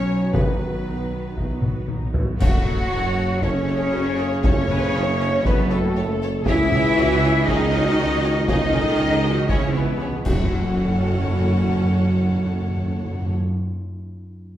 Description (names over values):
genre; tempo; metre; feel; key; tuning
cinematic, epic orchestral film score; 118 BPM; 4/4; straight; F# dorian; A4 = 440 Hz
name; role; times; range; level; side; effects
warm symphonic violin section; melody; 0.0-13.3 s; A4 to F#5; -30 LUFS; left 3 dB; none
clear chamber violin section; second line; 0.0-13.3 s; G#4 to C#5; -35 LUFS; left 3 dB; none
silver concert flute; second line; 0.0-13.3 s; A4 to F#5; -30 LUFS; left 1 dB; none
warm studio viola section; accompaniment; 0.0-13.3 s; F#3 to C#5; -30 LUFS; equal; none
clear trombone section; sustained chords; 0.0-13.3 s; A2 to F#3; -32 LUFS; right 1 dB; none
dark French horn section; sustained chords; 0.0-13.3 s; F#3 to F#4; -31 LUFS; left 3 dB; none
mellow tuba; bass; 0.0-13.3 s; F#1 to C#2; -27 LUFS; right 2 dB; none
rich symphonic cello section; bass; 0.0-13.3 s; D#3 to F#4; -26 LUFS; right 1 dB; none
rich symphonic double bass section; bass; 0.0-13.3 s; F#1 to F#2; -27 LUFS; right 2 dB; none
taiko ensemble; drums; 0.3-11.2 s; none; -23 LUFS; equal; none
clash cymbals and concert bass drum; percussion; 2.4-3.4, 10.3-11.5 s; none; -30 LUFS; equal; none
timpani; percussion; 2.4-3.1, 6.5-13.4 s; F#2 to C#3; -27 LUFS; equal; none
room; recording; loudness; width
wet recital hall reverb, RT60 1.3 s; recorded in a church or concert hall; -18 LUFS; side -12 dB against mid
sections
0.0-2.4 A section; 2.4-10.5 B section; 10.5-14.6 C section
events
drum fill 1.6-2.4; band accent 2.4-2.9, 10.5-11.0; timpani fill 6.5-10.5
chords
0.0 B; 2.4 F#m; 6.5 C#madd9; 10.3 F#m